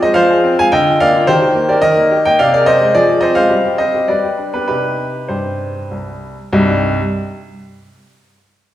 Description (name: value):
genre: classical-period piano sonatina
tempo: 95-108 BPM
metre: 3/4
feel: rubato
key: C minor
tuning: A4 = 440 Hz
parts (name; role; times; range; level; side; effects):
- clear baby grand piano; solo; 0.0-7.0 s; C2 to Ab5; -12 LUFS; equal; none
room: wet recital hall reverb, RT60 1.5 s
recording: heard from further back in the room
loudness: -11 LUFS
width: side -13 dB against mid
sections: 0.0-6.5 A section; 6.5-8.3 B section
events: slowing down 2.1-6.5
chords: 0.0 Fm; 0.7 Bb/D; 1.3 Eb; 2.4 Ab/C; 2.9 Dm7b5/F; 3.5 Cm/G; 4.1 G; 4.7 Cm